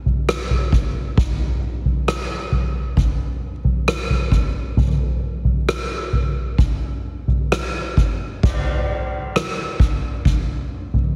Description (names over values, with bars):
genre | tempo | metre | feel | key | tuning
pop | 66 BPM | 4/4 | straight | none | none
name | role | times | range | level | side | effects
soft-mallet drum kit | drums | 0.1-11.1 s | crash cymbal, kick drum, rim click, toms | -21 LUFS | equal | none
room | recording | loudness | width
light reverb | heavily compressed radio sound, multiband compression | -21 LUFS | mono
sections
0.0-8.4 A section; 8.4-11.2 B section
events
none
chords
none